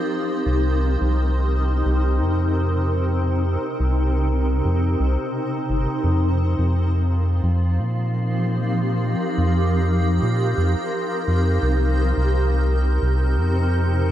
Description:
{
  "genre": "ambient dub",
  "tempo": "86 BPM",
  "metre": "4/4",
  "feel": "swing 57% on 16ths",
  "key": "unclear",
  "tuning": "A4 = 440 Hz",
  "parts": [
    { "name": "granular cloud pad", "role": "sustained chords", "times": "0.0-14.1 s", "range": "C3 to Bb4", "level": "-23 LUFS", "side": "equal", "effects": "built-in reverb" },
    { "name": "round analog bass", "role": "bass", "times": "0.5-14.1 s", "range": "G1 to Bb2", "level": "-19 LUFS", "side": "equal", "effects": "none" }
  ],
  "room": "light reverb, digital ambience",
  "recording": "none",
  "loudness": "-18 LUFS",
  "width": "side -12 dB against mid",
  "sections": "0.0-6.0 A section; 6.0-14.1 B section",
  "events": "none",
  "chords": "0.5 Cm7; 6.0 F7sus4; 11.6 Cm7"
}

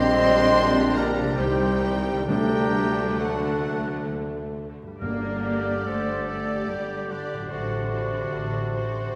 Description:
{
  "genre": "classical",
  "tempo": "64-76 BPM",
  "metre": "3/4",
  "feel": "rubato",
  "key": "G minor",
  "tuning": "A4 = 440 Hz",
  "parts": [
    { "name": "rich symphonic violin section", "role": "melody", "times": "0.0-9.2 s", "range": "D5 to C6", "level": "-35 LUFS", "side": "equal", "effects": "none" },
    { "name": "clear clarinet", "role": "second line", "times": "0.0-9.2 s", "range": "D4 to G4", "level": "-37 LUFS", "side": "equal", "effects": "none" },
    { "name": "mellow concert flute", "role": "second line", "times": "0.0-9.2 s", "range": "A4 to F#5", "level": "-31 LUFS", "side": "equal", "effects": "none" },
    { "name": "rich studio violin section", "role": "second line", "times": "0.0-9.2 s", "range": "A3 to D5", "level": "-40 LUFS", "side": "equal", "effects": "none" },
    { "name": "warm oboe", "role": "second line", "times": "0.0-9.2 s", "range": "D4 to C5", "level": "-34 LUFS", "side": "equal", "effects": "none" },
    { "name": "clear symphonic viola section", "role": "accompaniment", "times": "0.0-9.2 s", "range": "D3 to G4", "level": "-36 LUFS", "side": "equal", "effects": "none" },
    { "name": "dark bassoon", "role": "accompaniment", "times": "0.0-9.2 s", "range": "C3 to A3", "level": "-36 LUFS", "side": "equal", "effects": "none" },
    { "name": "dark trombone section", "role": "sustained chords", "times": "0.0-2.6 s", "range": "D3 to D4", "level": "-41 LUFS", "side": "equal", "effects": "none" },
    { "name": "mellow French horn section", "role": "sustained chords", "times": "0.0-9.2 s", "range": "F#3 to D5", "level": "-32 LUFS", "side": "equal", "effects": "none" },
    { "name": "concert harp", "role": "arpeggios", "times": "0.0-9.2 s", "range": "G2 to Eb5", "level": "-38 LUFS", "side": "equal", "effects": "none" },
    { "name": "clear tuba", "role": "bass", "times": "0.0-4.8 s", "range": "Bb1 to D2", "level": "-33 LUFS", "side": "equal", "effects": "none" },
    { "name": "dark symphonic cello section", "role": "bass", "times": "0.0-9.2 s", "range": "D3 to C4", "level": "-34 LUFS", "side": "equal", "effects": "none" },
    { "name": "rich symphonic double bass section", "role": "bass", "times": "0.0-9.2 s", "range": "G1 to D2", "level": "-36 LUFS", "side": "equal", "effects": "none" },
    { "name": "timpani", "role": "percussion", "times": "2.3-6.2 s", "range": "G2 to D3", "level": "-33 LUFS", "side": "equal", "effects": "none" }
  ],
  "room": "wet scoring stage reverb, RT60 1.8 s",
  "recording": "none",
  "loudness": "-24 LUFS",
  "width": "mono",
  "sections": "0.0-5.0 A section; 5.0-9.2 B section",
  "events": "none",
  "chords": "0.0 Gm/Bb; 1.4 Cm; 2.3 D; 5.0 Gm; 7.5 D7/A"
}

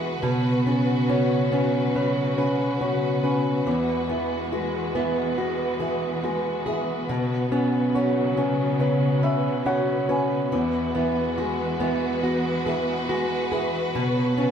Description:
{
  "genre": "pop",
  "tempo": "70 BPM",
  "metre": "4/4",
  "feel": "straight",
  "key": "E major",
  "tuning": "A4 = 442 Hz",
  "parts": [
    { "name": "clear baby grand piano", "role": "accompaniment", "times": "0.0-14.5 s", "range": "E2 to G#5", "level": "-26 LUFS", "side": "left 3 dB", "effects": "none" },
    { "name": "warm studio string section", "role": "sustained chords", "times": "0.0-14.5 s", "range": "C#3 to B4", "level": "-27 LUFS", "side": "left 1 dB", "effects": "none" },
    { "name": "fingerpicked plugged-in steel-string acoustic guitar", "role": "arpeggios", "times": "0.0-14.5 s", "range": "B2 to B4", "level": "-25 LUFS", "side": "right 3 dB", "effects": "none" }
  ],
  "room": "wet small room reverb, RT60 0.5 s",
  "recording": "band playing live in one room",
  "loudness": "-21 LUFS",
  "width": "side -8 dB against mid",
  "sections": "0.0-14.5 A section",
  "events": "grand piano fill 8.8-10.5",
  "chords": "0.2 Bsus2; 3.7 Eadd9; 7.1 Bsus2; 10.5 Eadd9; 13.9 Bsus2"
}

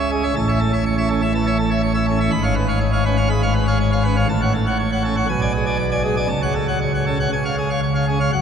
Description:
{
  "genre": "classical, organ toccata",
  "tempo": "122 BPM",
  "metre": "4/4",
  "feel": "straight",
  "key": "unclear",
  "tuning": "A4 = 443 Hz",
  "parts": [
    { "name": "pipe organ, plenum", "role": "solo", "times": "0.0-8.4 s", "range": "F#1 to B5", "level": "-17 LUFS", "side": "equal", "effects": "none" }
  ],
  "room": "wet cathedral reverb, RT60 5.9 s",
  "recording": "none",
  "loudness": "-17 LUFS",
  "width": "side -7 dB against mid",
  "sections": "0.0-8.3 A section",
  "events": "none",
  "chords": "0.4 A; 2.3 C#7/G#; 4.3 F#m/A; 5.3 G#dim/B; 6.3 F#m/C#; 7.3 C#"
}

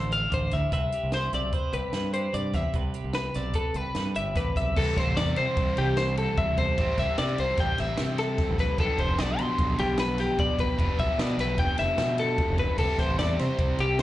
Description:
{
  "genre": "math rock and midwest emo",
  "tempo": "150 BPM",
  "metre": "5/4",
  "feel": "straight",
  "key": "C major",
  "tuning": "A4 = 440 Hz",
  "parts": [
    { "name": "twelve-string electric guitar", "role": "accompaniment", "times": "0.0-6.8 s", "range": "G2 to D5", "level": "-34 LUFS", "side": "right 5 dB", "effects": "none" },
    { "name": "twelve-string electric guitar", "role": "arpeggios", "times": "0.0-14.0 s", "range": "G4 to C6", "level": "-28 LUFS", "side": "left 2 dB", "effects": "digital delay, slapback echo" },
    { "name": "growling fingered electric bass", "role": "bass", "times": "0.0-14.0 s", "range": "F1 to C3", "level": "-30 LUFS", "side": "equal", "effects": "overdrive" },
    { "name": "compact cocktail drum kit", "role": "drums", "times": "0.1-14.0 s", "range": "crash cymbal, hi-hat, kick drum, ride cymbal, snare drum", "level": "-30 LUFS", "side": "equal", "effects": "none" },
    { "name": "overdriven electric guitar", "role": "riff", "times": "4.8-14.0 s", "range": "B2 to G4", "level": "-32 LUFS", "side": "right 2 dB", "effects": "slapback echo" }
  ],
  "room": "little or no reverb",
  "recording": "live gig heard through the venue's PA, club reverb, nothing above 10.9 kHz",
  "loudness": "-24 LUFS",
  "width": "side -14 dB against mid",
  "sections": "0.0-4.8 A section; 4.8-14.0 B section",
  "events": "none",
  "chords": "0.0 Dm11; 0.7 Cmaj9; 4.8 C6; 8.8 G13; 12.8 C69"
}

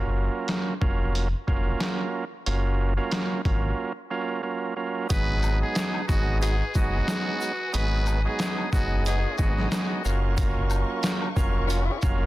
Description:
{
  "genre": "hip hop, boom-bap hip-hop",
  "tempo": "91 BPM",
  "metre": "4/4",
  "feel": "swing 56% on 16ths",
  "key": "G# dorian",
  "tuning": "A4 = 442 Hz",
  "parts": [
    { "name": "overdriven tonewheel organ", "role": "accompaniment", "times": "0.0-12.3 s", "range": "F#3 to A#4", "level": "-30 LUFS", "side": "right 4 dB", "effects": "high-pass filter, low-pass filter" },
    { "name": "sub bass with octave", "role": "bass", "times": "0.0-12.3 s", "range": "E#1 to G#1", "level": "-25 LUFS", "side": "equal", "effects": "none" },
    { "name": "trip hop sampler-style drum kit", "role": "drums", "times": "0.5-12.2 s", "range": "handclaps, hi-hat, kick drum, shaker, snare drum", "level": "-27 LUFS", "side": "equal", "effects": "none" },
    { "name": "trumpet with metal mute", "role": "melody", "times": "5.1-9.7 s", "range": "F#4 to B4", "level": "-32 LUFS", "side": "equal", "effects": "high-pass filter, low-pass filter, ping-pong delay" },
    { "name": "warm studio string section", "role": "sustained chords", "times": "5.1-12.3 s", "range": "A#4 to D#6", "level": "-39 LUFS", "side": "left 2 dB", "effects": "high-pass filter, low-pass filter" },
    { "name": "tube shaker and woodblock", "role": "percussion", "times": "5.1-12.2 s", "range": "none", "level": "-40 LUFS", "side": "left 4 dB", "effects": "none" },
    { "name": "mellow horn section", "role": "stabs", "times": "6.4-12.0 s", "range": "A#3 to F#4", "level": "-35 LUFS", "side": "left 3 dB", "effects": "high-pass filter, low-pass filter, ping-pong delay" }
  ],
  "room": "small room ambience",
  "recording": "dense, heavily limited modern master",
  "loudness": "-23 LUFS",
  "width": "side -16 dB against mid",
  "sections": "0.0-5.1 A section; 5.1-12.3 B section",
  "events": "break 3.8-5.1",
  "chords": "0.0 F#maj7; 5.1 G#m7; 10.0 F#maj7"
}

